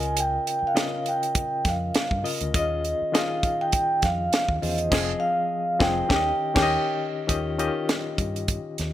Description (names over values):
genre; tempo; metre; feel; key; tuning
lush 1970s-style soul; 101 BPM; 4/4; swing 54% on 16ths; unclear; A4 = 441 Hz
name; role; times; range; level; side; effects
vibraphone with soft mallets; melody; 0.0-7.0 s; Eb5 to Ab5; -25 LUFS; right 2 dB; none
barky reed electric piano; accompaniment; 0.0-8.9 s; Db3 to Eb5; -28 LUFS; left 5 dB; overdrive, fast tremolo
vintage muted fingered electric bass; bass; 0.0-8.9 s; F1 to G2; -30 LUFS; equal; none
tight funk drum kit; drums; 0.0-8.9 s; crash cymbal, hi-hat, kick drum, snare drum; -26 LUFS; right 1 dB; none
room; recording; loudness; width
light reverb, studio reverb; none; -22 LUFS; side -12 dB against mid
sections
0.0-7.3 A section; 7.3-8.9 B section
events
band accent 4.9-7.3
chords
0.0 Db6; 2.5 Eb7sus4; 4.9 Fm7; 6.1 Eb7